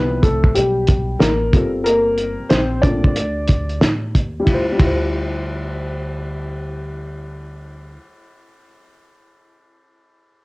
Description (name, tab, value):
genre	hip hop, jazz-hop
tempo	92 BPM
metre	4/4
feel	swing 63% on 16ths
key	D minor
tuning	A4 = 438 Hz
part	warm upright piano	accompaniment	0.0-8.0 s	F3 to D5	-20 LUFS	left 1 dB	low-pass filter, cassette tape
part	upright bass	bass	0.0-8.0 s	G1 to A2	-25 LUFS	equal	none
part	cloth-damped thuddy drum kit	drums	0.2-5.0 s	hi-hat, kick drum, ride cymbal, snare drum	-17 LUFS	equal	vintage 12-bit sampler grit, cassette tape
room	light reverb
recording	home recording on cassette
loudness	-16 LUFS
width	side -23 dB against mid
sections	0.0-4.5 A section; 4.5-7.1 B section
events	upright piano solo 0.0-4.5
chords	0.0 Dm11 (rootless); 1.5 Gm11; 4.5 Dm11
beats	0.55 1.21 | 1.86 2.51 3.16 3.81 | 4.47 5.12 5.77 6.42